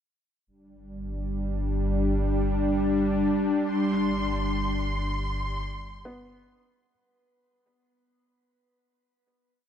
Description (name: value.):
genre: ambient.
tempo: free time.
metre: none.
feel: none.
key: G major.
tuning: A4 = 440 Hz.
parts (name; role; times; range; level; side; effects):
round analog bass; bass; 0.5-6.8 s; G1; -30 LUFS; equal; tube saturation.
bowed-like drone; drone; 1.0-7.0 s; G3 to D4; -26 LUFS; equal; built-in reverb.
warm symphonic violin section; texture; 3.7-6.9 s; C6; -33 LUFS; right 1 dB; none.
felt-muted upright piano; arpeggios; 6.1-9.6 s; B3; -50 LUFS; equal; none.
room: moderate shimmer reverb, RT60 9.2 s.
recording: cassette tape.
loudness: -24 LUFS.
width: side -9 dB against mid.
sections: 0.5-6.9 A section.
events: fade-out on synth drone 0.5-6.9; fade-out 3.7-6.9.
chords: 0.5 G5; 3.7 Gadd11.